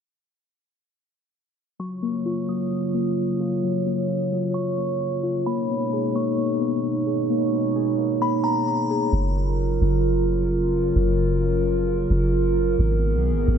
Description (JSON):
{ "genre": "hip hop", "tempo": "131 BPM", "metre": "4/4", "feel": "half-time", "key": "F# major", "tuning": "A4 = 439 Hz", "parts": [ { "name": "glassy synth bell", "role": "melody", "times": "1.8-9.1 s", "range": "A#5 to D#6", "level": "-32 LUFS", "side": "left 3 dB", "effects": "chorus, digital delay" }, { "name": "dark analog pad", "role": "sustained chords", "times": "1.8-13.6 s", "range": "B2 to C#5", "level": "-23 LUFS", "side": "right 2 dB", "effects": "wide subtle chorus" }, { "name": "muted felt-like synth keys", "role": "arpeggios", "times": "1.8-9.1 s", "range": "F#3 to G#4", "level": "-26 LUFS", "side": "left 5 dB", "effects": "chorus, digital delay" }, { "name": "soft 808-style bass", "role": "bass", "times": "9.1-13.6 s", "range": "F#1 to B1", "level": "-22 LUFS", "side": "equal", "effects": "none" } ], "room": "light reverb", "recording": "low-pass filter", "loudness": "-20 LUFS", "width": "side -8 dB against mid", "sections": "1.8-9.1 A section; 9.1-13.6 B section", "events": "filter sweep 1.8-9.1", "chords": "1.8 F#maj7; 5.5 G#madd9; 9.1 F#maj7; 12.8 G#madd9", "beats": "| 1.80 2.26 2.72 3.17 | 3.63 4.09 4.55 5.01 | 5.46 5.92 6.38 6.84 | 7.30 7.75 8.21 8.67 | 9.13 9.59 10.04 10.50 | 10.96 11.42 11.88 12.33 | 12.79 13.25" }